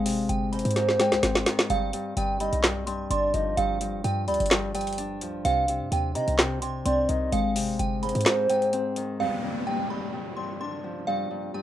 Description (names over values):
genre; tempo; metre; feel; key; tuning
hip hop, trap; 128 BPM; 4/4; half-time; unclear; A4 = 440 Hz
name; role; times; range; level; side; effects
delicate synth tine bell; melody; 0.0-11.6 s; F5 to C6; -31 LUFS; right 3 dB; chorus, phaser, low-pass filter
Celtic harp; accompaniment; 0.0-11.6 s; G2 to D4; -30 LUFS; left 3 dB; low-pass filter
short 808-style bass; bass; 0.0-8.3 s; F1 to C3; -30 LUFS; equal; none
trap drum kit; drums; 0.1-9.1 s; handclaps, hi-hat, snare drum; -26 LUFS; equal; vintage 12-bit sampler grit
hollow clarinet-like synth lead; second line; 0.5-9.2 s; C5 to Eb5; -27 LUFS; right 1 dB; chorus, tremolo, tape echo
downlifter; sound effects; 9.2-11.6 s; none; -34 LUFS; left 2 dB; none
room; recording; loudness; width
light reverb; rough home demo mix; -23 LUFS; side -12 dB against mid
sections
0.0-9.2 A section; 9.2-11.6 B section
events
drum fill 0.8-1.7; kick muted 8.3-9.2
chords
0.0 Abmaj7; 1.7 G7; 5.4 Cm; 7.3 Abmaj7; 9.2 G5